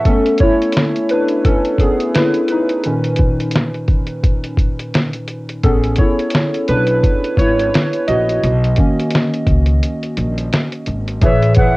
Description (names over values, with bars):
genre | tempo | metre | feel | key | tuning
lo-fi hip hop | 86 BPM | 4/4 | swing 60% on 16ths | unclear | A4 = 443 Hz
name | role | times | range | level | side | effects
warbly lo-fi synth keys | accompaniment | 0.0-11.8 s | A2 to E5 | -16 LUFS | equal | chorus, cassette tape, low-pass filter
lo-fi sampler-style drum kit | drums | 0.1-11.8 s | hi-hat, kick drum, snare drum | -16 LUFS | equal | cassette tape
upright bass | bass | 5.6-11.5 s | G#1 to C#2 | -17 LUFS | equal | none
breathy silver concert flute | melody | 11.2-11.8 s | E5 to F#5 | -17 LUFS | equal | low-pass filter, cassette tape
room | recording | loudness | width
moderate studio reverb, RT60 0.6 s | home recording on cassette | -13 LUFS | side -21 dB against mid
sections
0.1-11.2 A section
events
synth keys solo 0.1-11.2; break 9.8-11.2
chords
0.1 Aadd9; 2.8 Bmaj9; 5.6 Amaj9; 8.4 Bmaj9 (rootless); 11.2 Amaj9